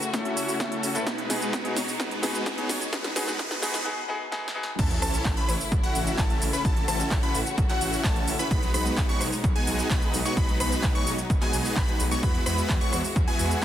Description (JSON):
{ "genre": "EDM, festival progressive house", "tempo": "129 BPM", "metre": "4/4", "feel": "straight", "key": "unclear", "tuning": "A4 = 445 Hz", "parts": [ { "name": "warm studio string section", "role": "sustained chords", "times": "0.0-13.6 s", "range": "B2 to F#4", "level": "-34 LUFS", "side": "left 2 dB", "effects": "sidechain pumping" }, { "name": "big-room dance drum kit", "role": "drums", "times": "0.0-13.6 s", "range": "cabasa, crash cymbal, handclaps, hi-hat, rim click, snare drum", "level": "-31 LUFS", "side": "right 1 dB", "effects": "overdrive" }, { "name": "riser, swell and sub drop", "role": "sound effects", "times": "0.1-6.6 s", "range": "none", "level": "-36 LUFS", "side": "right 1 dB", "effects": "none" }, { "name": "clear grand piano", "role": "accompaniment", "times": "0.1-4.7 s", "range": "A3 to A4", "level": "-32 LUFS", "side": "left 2 dB", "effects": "sidechain pumping, dub echo" }, { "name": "electronic kick drum", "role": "drums", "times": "0.1-13.6 s", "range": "none", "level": "-26 LUFS", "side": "equal", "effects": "overdrive, high-pass filter on kick, high-pass filter on room" }, { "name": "supersaw chords", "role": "riff", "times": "0.3-13.6 s", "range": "G#3 to C#5", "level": "-30 LUFS", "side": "equal", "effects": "sidechain pumping, low-pass filter, dub echo" }, { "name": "plucky unison lead", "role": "arpeggios", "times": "4.8-13.6 s", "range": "F#5 to C#6", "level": "-32 LUFS", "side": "left 1 dB", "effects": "phaser, sidechain pumping, dub echo" }, { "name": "wide detuned saw bass", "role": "bass", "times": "4.8-13.6 s", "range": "F#1 to E2", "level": "-31 LUFS", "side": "equal", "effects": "chorus, sidechain pumping" } ], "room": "light reverb", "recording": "dense, heavily limited modern master, high-pass filter", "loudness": "-23 LUFS", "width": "side -11 dB against mid", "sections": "0.0-4.8 A section; 4.8-13.6 B section", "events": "build-up 0.0-4.8; drum fill 0.0-3.9, 4.3-4.8; filter sweep on supersaw synth 0.0-4.8; riser 0.1-3.9; break 3.9-4.8; swell 3.9-4.8; drop 4.8-13.6; impact 4.8-6.6", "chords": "0.0 A; 1.1 B6; 4.8 A; 8.5 B6; 12.2 Eadd9", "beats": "0.14 0.60 | 1.07 1.53 2.00 2.46 | 2.93 3.39 3.86 4.32 | 4.79 5.25 5.72 6.18 | 6.65 7.11 7.58 8.04 | 8.51 8.97 9.44 9.90 | 10.37 10.84 11.30 11.77 | 12.23 12.70 13.16 13.62" }